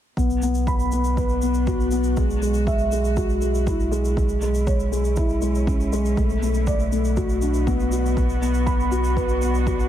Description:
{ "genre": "piano and strings electronica", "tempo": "120 BPM", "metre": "4/4", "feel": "straight", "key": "B dorian", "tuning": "A4 = 440 Hz", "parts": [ { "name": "muted string quartet", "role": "sustained chords", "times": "0.2-9.9 s", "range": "B2 to F#4", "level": "-36 LUFS", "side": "right 2 dB", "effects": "sidechain pumping" }, { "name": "felt-muted upright piano", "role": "riff", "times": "0.2-9.9 s", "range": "G#3 to B5", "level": "-23 LUFS", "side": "left 2 dB", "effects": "low-pass filter, tape echo" }, { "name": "round analog bass", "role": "bass", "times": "0.2-9.9 s", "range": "B1", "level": "-23 LUFS", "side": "right 1 dB", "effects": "sidechain pumping" }, { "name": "electronic kick drum", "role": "drums", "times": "0.2-9.8 s", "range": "none", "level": "-25 LUFS", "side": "right 1 dB", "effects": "overdrive" }, { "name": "shaker", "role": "drums", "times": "0.2-9.9 s", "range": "none", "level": "-40 LUFS", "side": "left 1 dB", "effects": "none" } ], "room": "light reverb", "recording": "none", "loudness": "-19 LUFS", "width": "side -11 dB against mid", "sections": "0.2-9.9 A section", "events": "fade-in on string quartet 0.2-9.9", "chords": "0.2 Bm; 2.2 Eadd9/B; 4.2 E6/B; 6.2 D6/B; 8.2 Bm", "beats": "| 0.17 0.67 1.17 1.67 | 2.17 2.67 3.17 3.67 | 4.17 4.67 5.17 5.67 | 6.17 6.67 7.17 7.67 | 8.17 8.67 9.17 9.67" }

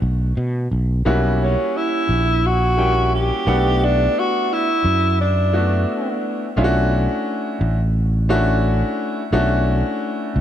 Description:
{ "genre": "hip hop, jazz-hop", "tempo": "87 BPM", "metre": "4/4", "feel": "swing 63% on 16ths", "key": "unclear", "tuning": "A4 = 440 Hz", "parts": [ { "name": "sustaining fretless electric bass", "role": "bass", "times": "0.0-10.4 s", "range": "A1 to B2", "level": "-18 LUFS", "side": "equal", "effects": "none" }, { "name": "bright upright piano", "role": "accompaniment", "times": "1.1-10.4 s", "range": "G3 to G5", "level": "-22 LUFS", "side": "left 1 dB", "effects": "none" }, { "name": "breathy tenor saxophone", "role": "melody", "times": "1.4-6.2 s", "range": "C#4 to G4", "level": "-20 LUFS", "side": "right 1 dB", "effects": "tape echo" } ], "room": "moderate plate reverb, RT60 3.6 s", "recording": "dreamy mix soaked in reverb", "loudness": "-16 LUFS", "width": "side -10 dB against mid", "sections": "0.0-1.1 A section; 1.1-10.4 B section", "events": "none", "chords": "0.0 N.C.; 1.1 F#7b9; 3.5 Gmaj13/B (rootless); 6.6 Bm11; 9.3 Dmaj9/B", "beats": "0.37 | 1.06 1.75 2.44 3.12 | 3.81 4.50 5.19 5.88 | 6.57 7.26 7.95 8.64 | 9.33 10.02" }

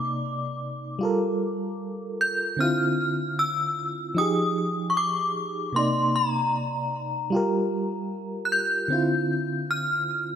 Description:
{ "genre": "R&B", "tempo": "76 BPM", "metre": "4/4", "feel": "straight", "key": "D phrygian", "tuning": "A4 = 439 Hz", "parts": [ { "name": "synth chime", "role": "melody", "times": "0.0-10.4 s", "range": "Bb5 to G6", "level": "-26 LUFS", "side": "left 1 dB", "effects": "ensemble chorus, ping-pong delay" }, { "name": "FM electric piano with tremolo", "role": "accompaniment", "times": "0.0-10.4 s", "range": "C3 to D5", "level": "-26 LUFS", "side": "right 1 dB", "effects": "none" } ], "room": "moderate lush hall reverb, RT60 2.3 s", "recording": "dark, warm production", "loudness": "-23 LUFS", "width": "side -8 dB against mid", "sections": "0.0-10.4 A section", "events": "none", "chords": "0.0 Cm9; 1.0 Gm9; 2.6 Dm9; 4.2 Fm9; 5.7 Cm9; 7.3 Gm7; 8.9 Dm9", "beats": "0.22 1.01 1.80 | 2.59 3.38 4.17 4.96 | 5.75 6.54 7.33 8.12 | 8.90 9.70" }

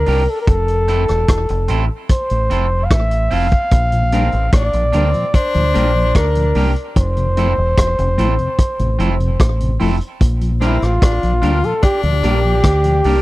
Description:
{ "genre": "roots reggae", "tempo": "74 BPM", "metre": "4/4", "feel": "straight", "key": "F major", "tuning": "A4 = 440 Hz", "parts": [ { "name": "warm flugelhorn", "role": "melody", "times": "0.0-13.2 s", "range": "E4 to F5", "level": "-19 LUFS", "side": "equal", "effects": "tape echo" }, { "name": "edgy tenor saxophone", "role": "second line", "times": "0.0-13.0 s", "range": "C4 to F4", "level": "-24 LUFS", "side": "left 6 dB", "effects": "tape echo" }, { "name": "deep dub fingered electric bass", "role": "bass", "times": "0.0-13.2 s", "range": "E1 to D2", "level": "-17 LUFS", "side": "equal", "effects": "none" }, { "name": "electric guitar at the edge of break-up", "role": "accompaniment", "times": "0.1-13.2 s", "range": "C4 to Bb4", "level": "-26 LUFS", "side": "right 4 dB", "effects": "tape echo" }, { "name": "vintage drum kit", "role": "drums", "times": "0.1-13.2 s", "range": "hi-hat, kick drum, rim click", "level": "-15 LUFS", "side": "equal", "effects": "none" }, { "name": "mellow tonewheel organ", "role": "accompaniment", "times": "3.9-13.2 s", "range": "F2 to E4", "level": "-22 LUFS", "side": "left 2 dB", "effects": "chorus vibrato, slow rotary speaker, slapback echo" } ], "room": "little or no reverb", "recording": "dry, close 1970s-style studio recording", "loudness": "-13 LUFS", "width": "side -18 dB against mid", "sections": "0.0-13.2 A section", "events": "none", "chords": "0.5 Fmaj7; 3.7 Bb6; 7.0 Fmaj7; 10.2 Bb6", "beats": "| 0.48 1.29 2.10 2.91 | 3.72 4.53 5.34 6.15 | 6.96 7.77 8.58 9.39 | 10.21 11.02 11.83 12.64" }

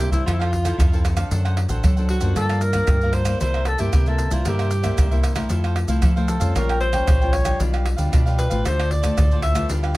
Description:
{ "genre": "samba and choro", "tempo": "114 BPM", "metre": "4/4", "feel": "straight", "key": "F major", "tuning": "A4 = 440 Hz", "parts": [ { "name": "breathy alto saxophone", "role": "melody", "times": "0.0-9.7 s", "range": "E4 to E5", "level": "-25 LUFS", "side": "equal", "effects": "none" }, { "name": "cavaquinho", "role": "accompaniment", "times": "0.0-10.0 s", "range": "D4 to G5", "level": "-31 LUFS", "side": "right 2 dB", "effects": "none" }, { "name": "nylon-string guitar", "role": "accompaniment", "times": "0.0-10.0 s", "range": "G2 to A4", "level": "-29 LUFS", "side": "left 3 dB", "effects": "none" }, { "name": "deep dub fingered electric bass", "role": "bass", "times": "0.0-10.0 s", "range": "A1 to F#3", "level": "-22 LUFS", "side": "equal", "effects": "none" }, { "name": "maracas, pandeiro, surdo and tamborim", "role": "percussion", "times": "0.0-10.0 s", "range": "none", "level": "-21 LUFS", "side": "equal", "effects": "none" } ], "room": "light reverb", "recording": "none", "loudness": "-18 LUFS", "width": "side -19 dB against mid", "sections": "0.0-10.0 A section", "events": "none", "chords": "0.3 Fmaj7; 1.3 D7; 2.4 Gm7; 3.4 C7; 5.5 Fmaj7; 6.6 Bbm6; 7.6 G7/B; 8.7 Dm7", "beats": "0.26 0.79 | 1.31 1.83 2.36 2.88 | 3.41 3.93 4.46 4.98 | 5.50 6.03 6.55 7.08 | 7.61 8.13 8.65 9.18 | 9.70" }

